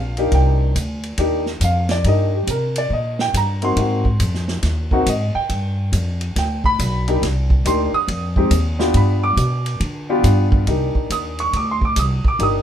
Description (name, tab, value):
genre	jazz, small-group swing and bop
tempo	139 BPM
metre	4/4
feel	swing 65% on 8ths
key	C minor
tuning	A4 = 441 Hz
part	warm baby grand piano	accompaniment	0.0-12.6 s	Ab3 to Eb6	-20 LUFS	equal	none
part	upright bass	bass	0.0-12.6 s	G1 to D3	-19 LUFS	equal	none
part	vintage drum kit	drums	0.2-12.5 s	hi-hat, kick drum, ride cymbal, snare drum	-24 LUFS	right 1 dB	none
room	light reverb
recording	minimal, uncompressed stereo recording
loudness	-16 LUFS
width	side -10 dB against mid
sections	0.0-10.7 A section; 10.7-12.6 A section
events	none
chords	0.3 Cm9; 3.8 Ab7; 5.5 G7; 7.2 Cm9; 8.1 Fm9; 8.9 G7; 10.7 Cm9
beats	| 0.32 0.75 1.18 1.61 | 2.05 2.48 2.91 3.34 | 3.77 4.20 4.63 5.06 | 5.49 5.92 6.36 6.79 | 7.22 7.65 8.08 8.51 | 8.95 9.38 9.81 10.24 | 10.67 11.10 11.54 11.97 | 12.40